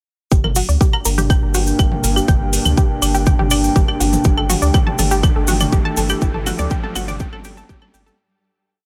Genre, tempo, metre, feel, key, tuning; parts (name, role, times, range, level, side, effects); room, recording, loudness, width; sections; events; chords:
melodic techno; 122 BPM; 4/4; straight; G minor; A4 = 440 Hz
dark analog pad; sustained chords; 0.3-8.1 s; A3 to G4; -28 LUFS; equal; lush chorus, sidechain pumping
analog pluck; arpeggios; 0.3-8.2 s; F#4 to Bb5; -26 LUFS; equal; chorus, sidechain pumping, delay
round analog bass; bass; 0.3-8.1 s; G1 to D2; -22 LUFS; equal; sidechain pumping
bowed-like drone; drone; 1.0-8.2 s; G2; -35 LUFS; equal
electronic kick drum; drums; 0.3-7.8 s; -18 LUFS; equal
house drum kit; drums; 0.3-8.2 s; claves, hi-hat, toms; -25 LUFS; equal; sidechain pumping on toms, sidechain pumping on perc, sidechain pumping on hats
cabasa; percussion; 0.3-8.2 s; -27 LUFS; equal
riser; sound effects; 3.7-8.2 s; -35 LUFS; equal
warbly tape-like pad; texture; 1.1-8.2 s; D4 to G5; -28 LUFS; equal; chorus, built-in reverb, sidechain pumping
digital ambience; -16 LUFS; mono
0.3-8.2 build
build-up 0.3-8.2; drum fill 0.3-8.2; filter sweep on synth arpeggio sound 0.3-8.2; fade-out 5.6-8.2
0.3 Gm; 4.2 Dsus4/G